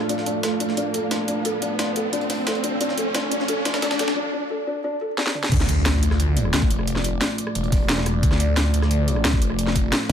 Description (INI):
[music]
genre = dark technical drum and bass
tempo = 177 BPM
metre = 4/4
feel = straight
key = D minor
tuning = A4 = 441 Hz
[part]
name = dark analog pad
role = sustained chords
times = 0.0-10.1 s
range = A3 to D5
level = -28 LUFS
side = right 1 dB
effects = chorus, sidechain pumping
[part]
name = drum and bass drum kit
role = drums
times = 0.0-10.1 s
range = crash cymbal, hi-hat, rim click, snare drum, toms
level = -25 LUFS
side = equal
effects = overdrive
[part]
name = riser and impact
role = sound effects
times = 0.0-6.9 s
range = none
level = -27 LUFS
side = equal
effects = none
[part]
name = airy breathy pad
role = texture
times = 0.0-4.2 s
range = D4 to F5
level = -33 LUFS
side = right 1 dB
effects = chorus, sidechain pumping
[part]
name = felt-muted upright piano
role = arpeggios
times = 0.1-5.5 s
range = D4 to A4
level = -27 LUFS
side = left 2 dB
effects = sidechain pumping, tape echo
[part]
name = jungle sampler-style drum kit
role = drums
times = 0.1-10.1 s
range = hi-hat, snare drum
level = -31 LUFS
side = equal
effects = high-pass filter on hats, high-pass filter on snare, high-pass filter on room
[part]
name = phased detuned saw bass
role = bass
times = 5.5-9.9 s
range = E1 to D2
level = -21 LUFS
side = equal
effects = phaser, overdrive
[part]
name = electronic kick drum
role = drums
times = 5.5-9.8 s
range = none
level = -20 LUFS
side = equal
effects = overdrive
[sound]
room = light reverb, digital ambience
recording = high-pass filter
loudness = -20 LUFS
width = side -8 dB against mid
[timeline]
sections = 0.0-5.5 A section; 5.5-10.1 B section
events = build-up 0.0-5.5; riser 0.0-4.2; break 4.2-5.5; drum fill 5.2-5.5; drop 5.5-10.1; impact 5.5-6.9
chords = 0.0 Dm